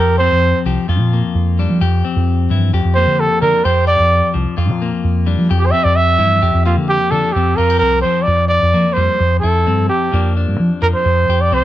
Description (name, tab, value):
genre	highlife guitar band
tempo	130 BPM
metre	4/4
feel	straight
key	unclear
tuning	A4 = 438 Hz
part	breathy trumpet	melody	0.0-11.6 s	F4 to E5	-15 LUFS	right 2 dB	none
part	clean electric guitar	accompaniment	0.0-11.6 s	F2 to G4	-20 LUFS	left 7 dB	none
part	fingered electric bass	bass	0.0-11.6 s	C2 to F3	-15 LUFS	equal	none
room	light reverb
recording	none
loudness	-12 LUFS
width	side -13 dB against mid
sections	0.0-7.3 A section; 7.3-11.6 B section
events	trumpet solo 0.0-7.3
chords	0.0 Fsus2; 0.9 Gm7/F; 1.8 C/F; 2.7 Bb6/F; 3.7 Fsus2; 4.6 Gm7/F; 5.5 C/F; 6.4 Bb6/F; 7.3 Fsus2; 8.3 Gm7/F; 9.2 C/F; 10.1 Bb6/F; 11.1 Fsus2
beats	0.43 0.89 1.35 | 1.81 2.27 2.73 3.19 | 3.65 4.11 4.58 5.04 | 5.50 5.96 6.42 6.89 | 7.35 7.81 8.28 8.74 | 9.20 9.67 10.13 10.60 | 11.06 11.52